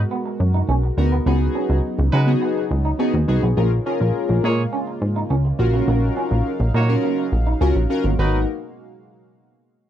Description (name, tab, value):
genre	funk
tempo	104 BPM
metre	4/4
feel	straight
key	G# dorian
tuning	A4 = 440 Hz
part	warm analog pad	sustained chords	0.0-8.5 s	B2 to E#5	-30 LUFS	right 1 dB	chorus
part	plucky analog bass	bass	0.0-8.5 s	G#1 to C#3	-18 LUFS	equal	none
part	electric guitar through a small old amp	riff	0.1-8.4 s	A#3 to D#4	-28 LUFS	right 4 dB	lush chorus
part	chorused polysynth	accompaniment	1.0-8.5 s	B3 to A#4	-22 LUFS	left 1 dB	none
part	clear horn section	second line	2.1-8.4 s	F#3 to C#5	-24 LUFS	right 4 dB	none
room	little or no reverb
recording	dry, close 1970s-style studio recording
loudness	-17 LUFS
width	side -10 dB against mid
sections	0.0-8.2 A section; 8.2-9.9 B section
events	none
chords	0.0 G#m9; 1.3 C#9sus4; 3.6 A#m7; 5.6 D#m9/A#; 8.2 G#m9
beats	0.11 0.69 | 1.26 1.84 2.42 2.99 | 3.57 4.15 4.72 5.30 | 5.88 6.46 7.03 7.61 | 8.19